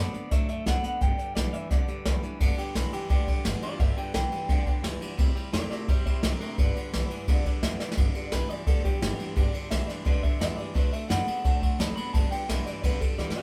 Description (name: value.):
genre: rockabilly.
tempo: 173 BPM.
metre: 4/4.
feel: straight.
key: G major.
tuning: A4 = 440 Hz.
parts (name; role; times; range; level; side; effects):
electric guitar through a small old amp; melody; 0.0-13.4 s; D4 to B5; -37 LUFS; equal; none.
picked steel-string acoustic guitar; accompaniment; 0.0-13.4 s; G2 to A4; -42 LUFS; equal; none.
twangy electric guitar; riff; 0.0-13.4 s; G2 to B3; -39 LUFS; equal; none.
upright bass; bass; 0.0-13.4 s; G1 to A2; -36 LUFS; equal; none.
jazz brush drum kit; drums; 0.1-13.4 s; crash cymbal, hi-hat, kick drum, ride cymbal, snare drum; -29 LUFS; equal; none.
room: light reverb.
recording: band playing live in one room.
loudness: -27 LUFS.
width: mono.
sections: 0.0-2.4 A section; 2.4-13.4 B section.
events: clean electric guitar solo 2.4-13.4; drum fill 7.8, 13.2.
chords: 0.0 D7; 1.0 G; 5.2 C; 6.6 G; 10.8 D7; 12.1 G.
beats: 0.32 0.67 | 1.02 1.36 1.71 2.06 | 2.41 2.76 3.10 3.45 | 3.80 4.15 4.50 4.84 | 5.19 5.54 5.89 6.23 | 6.58 6.93 7.28 7.62 | 7.97 8.32 8.67 9.01 | 9.36 9.71 10.06 10.40 | 10.75 11.10 11.45 11.79 | 12.14 12.49 12.84 13.18.